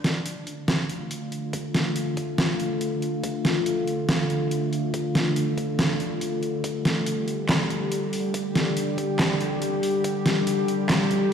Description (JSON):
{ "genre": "deep dubstep", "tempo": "141 BPM", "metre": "4/4", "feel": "swing 62% on 16ths, half-time", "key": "D minor", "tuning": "A4 = 440 Hz", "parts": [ { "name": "bowed-like drone", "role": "sustained chords", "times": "0.0-11.3 s", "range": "D3 to G4", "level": "-25 LUFS", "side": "left 1 dB", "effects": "built-in reverb" }, { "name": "dubstep drum kit", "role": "drums", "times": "0.0-11.2 s", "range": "handclaps, hi-hat, snare drum", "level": "-26 LUFS", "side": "equal", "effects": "overdrive, studio reverb" }, { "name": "electronic kick drum", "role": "drums", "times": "1.5-10.1 s", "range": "none", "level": "-36 LUFS", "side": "right 1 dB", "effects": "overdrive, high-pass filter on kick, studio reverb" } ], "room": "wet lush hall reverb, RT60 2.5 s", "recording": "played on a big sound system in a bare room, large studio reverb, vinyl crackle", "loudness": "-23 LUFS", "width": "side -7 dB against mid", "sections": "0.0-11.3 A section", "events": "build-up 0.0-11.3; filter sweep on synth drone 0.0-11.3", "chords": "0.0 Dm", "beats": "0.26 0.68 1.11 | 1.53 1.96 2.38 2.81 | 3.24 3.66 4.09 4.51 | 4.94 5.36 5.79 6.21 | 6.64 7.07 7.49 7.92 | 8.34 8.77 9.19 9.62 | 10.04 10.47 10.89 11.32" }